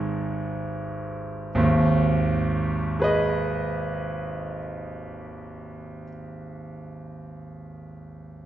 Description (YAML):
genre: classical, romantic character piece for solo piano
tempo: 42 BPM (dotted quarters)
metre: 6/8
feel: rubato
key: G# minor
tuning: A4 = 439 Hz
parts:
  - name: bright concert grand piano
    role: solo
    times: 0.0-8.5 s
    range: G#1 to D#5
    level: -25 LUFS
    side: right 1 dB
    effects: none
room: wet concert hall reverb, RT60 2.2 s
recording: heard from further back in the room, nothing above 7.9 kHz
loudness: -23 LUFS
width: side -12 dB against mid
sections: 0.0-1.6 A section; 1.6-7.3 B section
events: slowing down 0.0-1.6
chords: 0.0 G#m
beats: 0.02 | 1.56 3.01 | 4.45 5.88